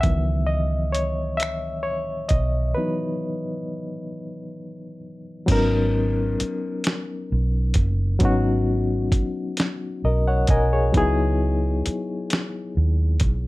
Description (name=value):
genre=slow six-eight R&B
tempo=44 BPM (dotted quarters)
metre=6/8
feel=straight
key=G# minor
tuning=A4 = 439 Hz
part: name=barky reed electric piano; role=accompaniment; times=0.0-13.5 s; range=D#3 to G#5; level=-25 LUFS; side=left 2 dB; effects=overdrive, fast tremolo, plate reverb
part: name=vintage muted fingered electric bass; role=bass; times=0.0-13.5 s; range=F#1 to D#2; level=-22 LUFS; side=right 1 dB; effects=none
part: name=dusty soul sampler-style drum kit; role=drums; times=0.0-13.4 s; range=crash cymbal, finger snaps, hi-hat, kick drum, snare drum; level=-22 LUFS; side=equal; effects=overdrive
room=light reverb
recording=none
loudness=-20 LUFS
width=side -19 dB against mid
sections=0.0-5.5 A section; 5.5-13.5 B section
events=reed electric piano solo 0.0-5.5; break 2.8-5.5; reed electric piano fill 9.6-10.9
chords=0.0 C#m11; 5.5 G#m11; 10.9 C#m11